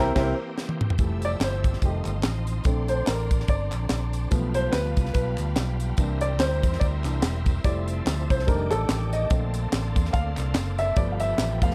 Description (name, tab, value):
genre	uptempo gospel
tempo	144 BPM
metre	4/4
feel	swing 57% on 8ths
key	F major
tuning	A4 = 440 Hz
part	warm upright piano	accompaniment	0.0-11.7 s	D3 to Bb5	-30 LUFS	equal	none
part	bright tonewheel organ	sustained chords	0.0-11.7 s	D3 to Bb4	-39 LUFS	equal	slow rotary speaker, overdrive, chorus vibrato
part	fingered electric bass	bass	0.0-11.7 s	E1 to E2	-30 LUFS	equal	none
part	tight funk drum kit	drums	0.2-11.7 s	crash cymbal, hi-hat, kick drum, snare drum, toms	-27 LUFS	equal	none
part	warm studio string section	sustained chords	1.0-11.7 s	F4 to E6	-43 LUFS	equal	none
part	tambourine and handclaps	percussion	1.0-11.7 s	none	-42 LUFS	equal	none
room	small room ambience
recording	dark, warm production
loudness	-25 LUFS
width	mono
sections	1.0-11.7 A section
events	upright piano fill 0.0-1.0; band accent 0.0-1.0; drum fill 0.6-1.0; upright piano solo 1.0-11.7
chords	0.0 C7; 1.0 Fmaj9; 1.8 F7; 2.7 Bbmaj9; 4.3 G9/B; 6.0 C7; 7.6 Fmaj7; 8.5 F13; 9.3 Bbmaj9; 11.0 G9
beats	0.16 0.58 | 0.99 1.41 1.82 2.24 | 2.65 3.07 3.49 3.90 | 4.32 4.74 5.15 5.57 | 5.98 6.40 6.82 7.23 | 7.65 8.06 8.48 8.89 | 9.31 9.72 10.14 10.55 | 10.97 11.38